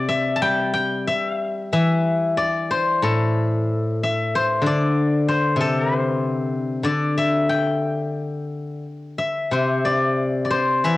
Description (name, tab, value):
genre	chinese traditional, Chinese solo plucked strings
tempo	93 BPM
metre	4/4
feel	rubato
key	C gong mode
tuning	A4 = 440 Hz
part	steel-string zither	solo	0.0-11.0 s	A2 to A5	-19 LUFS	left 2 dB	cassette tape
room	moderate spring reverb, RT60 1.3 s, studio reverb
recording	home recording on cassette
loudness	-19 LUFS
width	side -17 dB against mid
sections	0.0-11.0 A section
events	none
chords	none